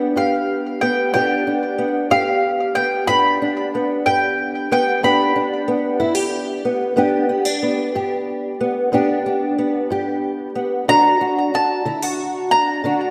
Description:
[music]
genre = acoustic country blues, solo or duo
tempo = 62 BPM (dotted quarters)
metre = 12/8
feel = straight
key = G major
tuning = A4 = 440 Hz
[part]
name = fingerpicked old ladder-braced acoustic guitar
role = accompaniment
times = 0.0-13.1 s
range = G2 to G4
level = -21 LUFS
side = equal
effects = analog chorus
[part]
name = mandolin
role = melody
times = 0.2-13.1 s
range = F5 to B5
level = -21 LUFS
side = equal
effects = delay
[sound]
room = wet lush hall reverb, RT60 2.7 s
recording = dreamy mix soaked in reverb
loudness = -19 LUFS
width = mono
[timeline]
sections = 0.0-13.1 A section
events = none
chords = 0.0 G; 10.9 D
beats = 0.16 1.13 2.10 | 3.07 4.05 5.02 6.00 | 6.97 7.95 8.93 9.90 | 10.88 11.86 12.84

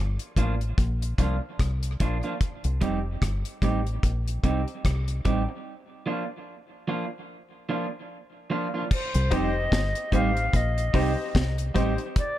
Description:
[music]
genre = dub reggae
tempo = 74 BPM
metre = 4/4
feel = swing 58% on 16ths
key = C dorian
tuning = A4 = 439 Hz
[part]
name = deep dub fingered electric bass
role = bass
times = 0.0-12.0 s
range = F1 to C2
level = -26 LUFS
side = equal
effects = none
[part]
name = deep reggae drum kit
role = drums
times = 0.2-12.4 s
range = crash cymbal, hi-hat, kick drum, rim click, snare drum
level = -26 LUFS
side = equal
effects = none
[part]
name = electric guitar at the edge of break-up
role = accompaniment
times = 0.4-12.0 s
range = F3 to G4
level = -30 LUFS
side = right 4 dB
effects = tape echo
[part]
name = reedy silver concert flute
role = melody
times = 8.9-12.4 s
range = C5 to F5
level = -30 LUFS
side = left 1 dB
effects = tape echo
[part]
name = clear grand piano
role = stabs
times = 9.3-12.0 s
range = Eb4 to C5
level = -33 LUFS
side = left 6 dB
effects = tape echo
[sound]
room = light reverb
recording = dark, warm production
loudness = -24 LUFS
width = side -13 dB against mid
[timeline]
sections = 0.0-8.9 A section; 8.9-12.4 B section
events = break 5.7-8.9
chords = 0.0 Bb; 2.4 Cm; 5.7 Bb; 8.9 Cm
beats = 0.78 1.59 | 2.40 3.22 4.03 4.84 | 5.66 6.47 7.28 8.10 | 8.91 9.72 10.53 11.35 | 12.16

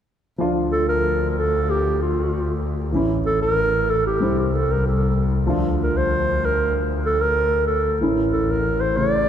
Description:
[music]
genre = klezmer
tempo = 94 BPM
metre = 2/4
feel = straight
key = D minor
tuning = A4 = 441 Hz
[part]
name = dark upright piano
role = accompaniment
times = 0.4-9.3 s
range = C#3 to F4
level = -24 LUFS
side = equal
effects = none
[part]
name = rich double bass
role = bass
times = 0.4-9.3 s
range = A1 to D2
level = -23 LUFS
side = equal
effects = none
[part]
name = dark clarinet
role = melody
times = 0.7-9.3 s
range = F4 to D5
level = -21 LUFS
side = right 1 dB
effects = none
[sound]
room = wet cathedral reverb, RT60 5.5 s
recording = recorded in a church or concert hall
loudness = -18 LUFS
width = side -9 dB against mid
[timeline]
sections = 0.4-9.3 A section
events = none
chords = 0.4 Dm; 2.9 A; 4.2 C; 5.5 Dm; 8.0 A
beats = | 0.40 1.04 | 1.67 2.31 | 2.94 3.58 | 4.21 4.85 | 5.49 6.12 | 6.75 7.39 | 8.02 8.65 | 9.29

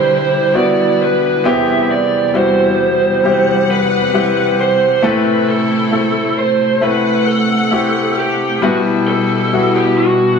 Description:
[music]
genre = pop ballad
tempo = 67 BPM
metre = 4/4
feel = straight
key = E minor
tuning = A4 = 440 Hz
[part]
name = lead guitar through a small cranked amp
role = melody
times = 0.0-10.4 s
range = F#4 to E5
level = -15 LUFS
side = right 3 dB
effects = overdrive
[part]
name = bright grand piano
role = accompaniment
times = 0.0-10.4 s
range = E2 to B4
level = -16 LUFS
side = left 3 dB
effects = none
[part]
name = rich studio string section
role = sustained chords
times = 0.0-10.4 s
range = E2 to F#5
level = -20 LUFS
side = right 1 dB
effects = none
[sound]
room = moderate plate reverb, RT60 3.4 s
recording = small room ambience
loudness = -12 LUFS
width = side -6 dB against mid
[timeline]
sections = 0.0-10.4 A section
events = none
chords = 0.0 Em7; 1.5 Cmaj7/E; 5.0 Am; 8.6 Em/B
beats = 0.55 | 1.45 2.35 3.24 4.14 | 5.04 5.93 6.82 7.72 | 8.63 9.53

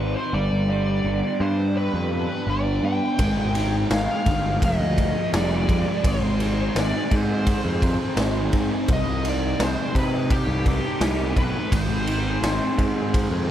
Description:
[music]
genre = psychedelic rock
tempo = 84 BPM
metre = 4/4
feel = straight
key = unclear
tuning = A4 = 441 Hz
[part]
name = dark smooth lead guitar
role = melody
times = 0.0-13.5 s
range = G4 to G5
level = -28 LUFS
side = equal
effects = wah, overdrive, dub echo
[part]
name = fuzz guitar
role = riff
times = 0.0-13.5 s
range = C3 to Ab4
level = -26 LUFS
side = equal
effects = distortion, phaser, dub echo
[part]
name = fuzz picked electric bass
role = bass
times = 0.0-13.5 s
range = F1 to C3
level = -25 LUFS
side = equal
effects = overdrive
[part]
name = raw garage drum kit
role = drums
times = 3.2-13.3 s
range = kick drum, ride cymbal, snare drum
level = -24 LUFS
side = equal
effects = none
[sound]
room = small room reverb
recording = echo-heavy mix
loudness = -20 LUFS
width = side -11 dB against mid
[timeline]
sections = 0.0-13.5 A section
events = none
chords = 0.3 G; 3.2 Ab5; 4.6 Fmadd9; 6.0 Ab; 8.9 Cm; 11.7 Ab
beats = | 0.34 1.05 1.76 2.48 | 3.19 3.90 4.62 5.33 | 6.04 6.75 7.46 8.18 | 8.88 9.60 10.30 11.01 | 11.72 12.43 13.14

